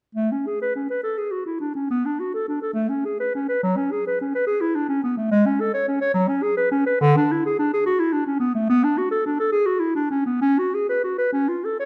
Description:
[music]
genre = classical, baroque-style fantasia for unaccompanied clarinet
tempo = 70 BPM (dotted quarters)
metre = 6/8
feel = uneven beats, rubato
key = A major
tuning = A4 = 440 Hz
[part]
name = mellow clarinet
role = solo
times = 0.1-11.9 s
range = D3 to C#5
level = -22 LUFS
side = equal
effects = none
[sound]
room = wet recital hall reverb, RT60 1.4 s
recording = dark, warm production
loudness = -22 LUFS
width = mono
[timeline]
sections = 0.1-11.9 A section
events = none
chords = none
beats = | 0.15 1.04 | 1.89 2.75 | 3.63 4.47 | 5.31 6.14 | 7.00 7.86 | 8.68 9.52 | 10.43 11.33

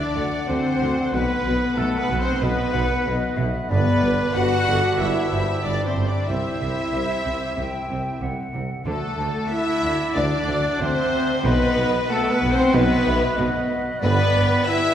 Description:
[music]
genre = cinematic, epic orchestral film score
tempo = 93 BPM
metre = 4/4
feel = straight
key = unclear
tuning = A4 = 440 Hz
[part]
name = warm symphonic violin section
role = melody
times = 0.0-14.9 s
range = A4 to F#5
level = -29 LUFS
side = left 3 dB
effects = none
[part]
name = hollow concert flute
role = second line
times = 0.0-14.9 s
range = A4 to G5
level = -29 LUFS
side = left 2 dB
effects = none
[part]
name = warm symphonic violin section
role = second line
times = 0.0-14.9 s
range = A4 to F#5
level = -31 LUFS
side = left 1 dB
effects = none
[part]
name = warm studio viola section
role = accompaniment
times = 0.0-14.9 s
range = A3 to F#4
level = -28 LUFS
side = right 1 dB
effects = none
[part]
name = clear woodwind section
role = sustained chords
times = 0.0-14.9 s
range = G3 to B5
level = -32 LUFS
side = equal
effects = none
[part]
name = warm French horn section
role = sustained chords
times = 0.0-14.9 s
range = A3 to F#4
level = -26 LUFS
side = left 2 dB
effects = none
[part]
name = mellow trumpet section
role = stabs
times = 0.0-14.9 s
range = A4 to F#5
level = -28 LUFS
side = equal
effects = none
[part]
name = impact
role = sound effects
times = 0.0-1.1 s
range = none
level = barely audible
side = none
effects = none
[part]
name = warm symphonic cello section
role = bass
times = 0.2-14.4 s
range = G2 to D3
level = -29 LUFS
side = right 2 dB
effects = none
[part]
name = warm symphonic double bass section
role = bass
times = 0.2-14.4 s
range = G1 to D2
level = -28 LUFS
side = right 1 dB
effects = none
[part]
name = warm tuba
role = bass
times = 0.2-14.5 s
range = G1 to D2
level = -30 LUFS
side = right 2 dB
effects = none
[sound]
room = wet concert hall reverb, RT60 2.4 s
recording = recorded in a church or concert hall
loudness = -19 LUFS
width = side -10 dB against mid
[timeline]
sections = 0.0-14.9 A section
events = impact 0.0-1.1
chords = 0.0 D; 1.1 B5; 3.7 G; 6.3 C; 8.9 D; 11.5 B; 14.0 G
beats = 0.49 | 1.13 1.78 2.42 3.07 | 3.71 4.36 5.00 5.65 | 6.29 6.94 7.58 8.23 | 8.87 9.52 10.16 10.81 | 11.45 12.10 12.74 13.39 | 14.04 14.68

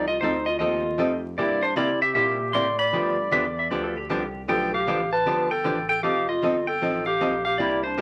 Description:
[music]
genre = country, western swing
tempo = 154 BPM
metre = 4/4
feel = swing 65% on 8ths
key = unclear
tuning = A4 = 440 Hz
[part]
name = clean lap steel guitar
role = melody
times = 0.0-8.0 s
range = C5 to C6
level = -28 LUFS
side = equal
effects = none
[part]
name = mellow clarinet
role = second line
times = 0.0-8.0 s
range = D4 to D5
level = -29 LUFS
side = equal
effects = none
[part]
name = archtop guitar, miked and amplified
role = accompaniment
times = 0.0-8.0 s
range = C3 to A4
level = -30 LUFS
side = equal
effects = none
[part]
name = growling FM bass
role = bass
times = 0.0-8.0 s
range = F1 to C3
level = -38 LUFS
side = equal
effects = none
[part]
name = warm upright piano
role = accompaniment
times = 0.6-4.7, 7.6-7.8 s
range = A3 to G4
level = -36 LUFS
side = equal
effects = none
[part]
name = pedal steel guitar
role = second line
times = 3.3-4.4 s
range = G4 to E5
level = -30 LUFS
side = equal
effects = none
[sound]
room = wet club reverb, RT60 0.6 s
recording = vinyl crackle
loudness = -24 LUFS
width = mono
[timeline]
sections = 0.0-8.0 A section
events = none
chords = 0.0 F9; 1.4 C9; 2.9 G9; 6.0 F9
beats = 0.21 0.60 0.99 | 1.38 1.77 2.16 2.54 | 2.93 3.32 3.71 4.10 | 4.49 4.88 5.27 5.66 | 6.05 6.43 6.82 7.21 | 7.60 7.99

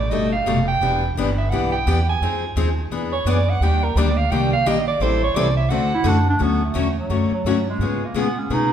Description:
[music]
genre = acoustic string swing (jazz manouche)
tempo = 172 BPM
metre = 4/4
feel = swing 62% on 8ths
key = unclear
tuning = A4 = 439 Hz
[part]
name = warm soprano saxophone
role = second line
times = 0.0-6.3 s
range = Bb4 to Ab5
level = -23 LUFS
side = right 4 dB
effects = none
[part]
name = upright bass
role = bass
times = 0.0-8.7 s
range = E1 to B2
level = -22 LUFS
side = right 1 dB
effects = none
[part]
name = picked steel-string acoustic guitar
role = accompaniment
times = 0.1-8.7 s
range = B2 to A4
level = -22 LUFS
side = left 4 dB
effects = none
[part]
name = breathy clarinet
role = melody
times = 5.9-8.7 s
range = F#3 to E4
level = -23 LUFS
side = right 2 dB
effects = none
[sound]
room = wet large studio reverb, RT60 1.4 s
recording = band playing live in one room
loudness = -17 LUFS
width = side -9 dB against mid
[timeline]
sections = 0.0-6.4 A section; 6.4-8.7 B section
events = soprano saxophone solo 0.0-6.4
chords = 0.0 Baug7; 0.8 Em7; 2.2 Fm7; 2.9 E9; 3.6 Ebmaj7; 5.0 Am7; 5.7 D7; 6.4 Dmaj7; 7.8 C#7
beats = 0.12 0.47 | 0.82 1.17 1.52 1.87 | 2.22 2.56 2.91 3.26 | 3.61 3.96 4.31 4.66 | 5.01 5.35 5.70 6.05 | 6.40 6.75 7.10 7.45 | 7.80 8.15 8.50

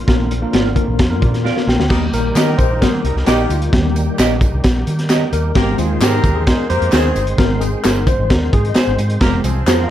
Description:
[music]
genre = uptempo 1960s-style soul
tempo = 131 BPM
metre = 4/4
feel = straight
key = Eb major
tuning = A4 = 438 Hz
[part]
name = overdriven tonewheel organ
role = sustained chords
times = 0.0-9.9 s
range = D3 to C5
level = -27 LUFS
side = equal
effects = slow rotary speaker, chorus vibrato
[part]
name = vintage muted fingered electric bass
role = bass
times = 0.0-9.8 s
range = F1 to Eb3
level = -19 LUFS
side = equal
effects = none
[part]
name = tine electric piano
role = accompaniment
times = 0.1-9.9 s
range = Eb3 to G5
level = -21 LUFS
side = left 3 dB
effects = medium stereo tremolo
[part]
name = crunchy breakbeat drum kit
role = drums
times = 0.1-9.8 s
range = crash cymbal, hi-hat, kick drum, snare drum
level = -16 LUFS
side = equal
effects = none
[part]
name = semi-hollow electric guitar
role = stabs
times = 0.5-9.8 s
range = Eb4 to Eb5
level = -23 LUFS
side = right 5 dB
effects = none
[part]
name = mellow horn section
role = second line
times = 1.9-9.9 s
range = Eb3 to C5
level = -24 LUFS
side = right 1 dB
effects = none
[part]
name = tambourine and handclaps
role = percussion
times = 1.9-9.8 s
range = none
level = -29 LUFS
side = left 1 dB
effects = none
[sound]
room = light reverb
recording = dark, warm production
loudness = -13 LUFS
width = side -12 dB against mid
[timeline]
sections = 0.0-1.9 A section; 1.9-9.9 B section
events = tine electric piano fill 1.0-1.9; drum fill 1.4-1.9; tine electric piano solo 1.9-9.9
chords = 0.0 Bb; 1.9 Eb; 5.6 Ab; 9.2 Fm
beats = | 0.07 0.53 0.99 1.45 | 1.90 2.36 2.82 3.27 | 3.73 4.19 4.64 5.10 | 5.56 6.01 6.47 6.93 | 7.39 7.84 8.30 8.76 | 9.21 9.67

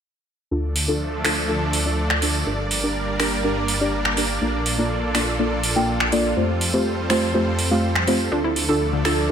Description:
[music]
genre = progressive house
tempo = 123 BPM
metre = 4/4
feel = straight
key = D minor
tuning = A4 = 440 Hz
[part]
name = supersaw pad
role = sustained chords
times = 0.7-9.3 s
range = F3 to D5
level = -26 LUFS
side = right 1 dB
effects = none
[part]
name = deep mellow chord stab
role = stabs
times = 0.5-9.3 s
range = A3 to G5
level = -23 LUFS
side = equal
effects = chorus, tape echo
[part]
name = dark detuned saw bass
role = bass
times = 0.5-9.3 s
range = G1 to F2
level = -26 LUFS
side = equal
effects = tube saturation
[part]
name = house drum kit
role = drums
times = 0.8-9.2 s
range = finger snaps, hi-hat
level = -24 LUFS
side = right 1 dB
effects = none
[part]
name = analog pluck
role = arpeggios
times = 8.3-9.1 s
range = D3 to A4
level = -24 LUFS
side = right 2 dB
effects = chorus, tape echo
[sound]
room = light reverb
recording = none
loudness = -19 LUFS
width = side -8 dB against mid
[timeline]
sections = 0.5-9.3 A section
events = filter sweep on synth stab 0.5-9.3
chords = 0.5 Dm; 2.5 Gm; 4.4 Bbmaj7; 6.4 Fadd9; 8.3 Dm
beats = | 0.51 1.00 1.49 1.98 | 2.46 2.95 3.44 3.93 | 4.42 4.90 5.39 5.88 | 6.37 6.86 7.34 7.83 | 8.32 8.81 9.29

